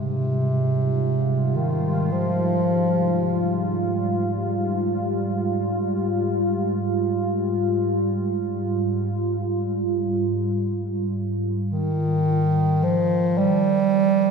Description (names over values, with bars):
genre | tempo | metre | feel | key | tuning
dark ambient drone | free time | none | none | F minor | A4 = 438 Hz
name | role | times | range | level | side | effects
mellow bass clarinet | melody | 0.0-3.8, 11.7-14.3 s | C3 to G3 | -21 LUFS | right 1 dB | ping-pong delay
sweeping resonant pad | sustained chords | 0.0-13.4 s | Ab2 to F4 | -23 LUFS | equal | chorus
room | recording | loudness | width
wet cathedral reverb, RT60 6.1 s | in a vast, echoing space | -20 LUFS | side -5 dB against mid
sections
0.0-13.4 A section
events
fade-in on analog synth pad 0.0-13.4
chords
0.0 Fmadd9; 13.4 N.C.